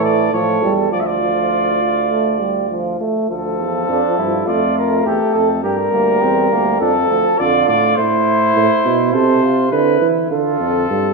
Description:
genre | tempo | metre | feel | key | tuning
classical, imitative canzona for brass ensemble | 102 BPM | 4/4 | straight | D minor | A4 = 440 Hz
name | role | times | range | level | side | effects
mellow trumpet | melody | 0.0-11.1 s | A4 to E5 | -18 LUFS | left 3 dB | none
mellow flugelhorn | second line | 0.0-11.1 s | Bb3 to A4 | -20 LUFS | right 5 dB | none
clear euphonium | accompaniment | 0.0-8.0 s | D3 to A3 | -20 LUFS | right 2 dB | none
clear tuba | bass | 0.0-11.1 s | D2 to E3 | -19 LUFS | right 4 dB | none
room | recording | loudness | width
moderate scoring stage reverb, RT60 1.8 s | none | -14 LUFS | side -2 dB against mid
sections
0.0-3.3 A section; 3.3-11.1 B section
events
none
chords
0.0 A; 0.9 Dm; 4.5 Dm/F; 5.6 Gm; 6.8 Dm; 8.0 Am; 9.1 Am/C; 10.3 Dm

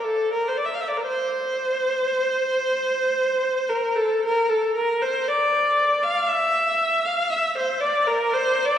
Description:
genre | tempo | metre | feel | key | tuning
classical, free, expressive piece for unaccompanied viola | 58 BPM | 4/4 | rubato | unclear | A4 = 439 Hz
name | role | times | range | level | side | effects
clear viola | solo | 0.0-8.8 s | A4 to F5 | -20 LUFS | equal | none
room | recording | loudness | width
wet church reverb, RT60 3.3 s | heard from further back in the room | -20 LUFS | side -10 dB against mid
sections
0.0-8.8 A section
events
none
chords
none

